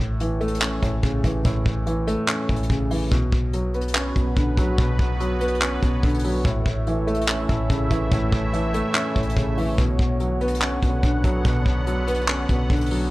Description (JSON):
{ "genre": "hip hop, trap", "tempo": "144 BPM", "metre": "4/4", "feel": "half-time", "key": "B minor", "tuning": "A4 = 440 Hz", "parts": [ { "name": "dark baby grand piano", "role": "accompaniment", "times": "0.0-13.1 s", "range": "A2 to C#4", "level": "-24 LUFS", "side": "equal", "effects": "none" }, { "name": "clean 808-style bass", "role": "bass", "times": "0.0-13.1 s", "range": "A1 to B1", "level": "-26 LUFS", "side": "equal", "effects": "none" }, { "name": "soft brush drum kit", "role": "drums", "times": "0.2-13.0 s", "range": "handclaps, hi-hat, kick drum", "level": "-24 LUFS", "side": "equal", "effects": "none" }, { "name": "sweeping resonant pad", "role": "sustained chords", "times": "3.1-13.1 s", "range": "D3 to F#5", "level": "-29 LUFS", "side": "equal", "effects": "chorus" } ], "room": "studio reverb", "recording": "dry, gritty hardware recording", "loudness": "-20 LUFS", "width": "side -19 dB against mid", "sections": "0.0-13.1 A section", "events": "none", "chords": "0.0 A; 3.1 Bmadd9; 6.5 A; 9.8 Bmadd9", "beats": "0.20 0.62 1.03 | 1.45 1.87 2.28 2.70 | 3.12 3.53 3.95 4.37 | 4.78 5.20 5.62 6.03 | 6.45 6.87 7.28 7.70 | 8.12 8.53 8.95 9.37 | 9.78 10.20 10.62 11.03 | 11.45 11.87 12.28 12.70" }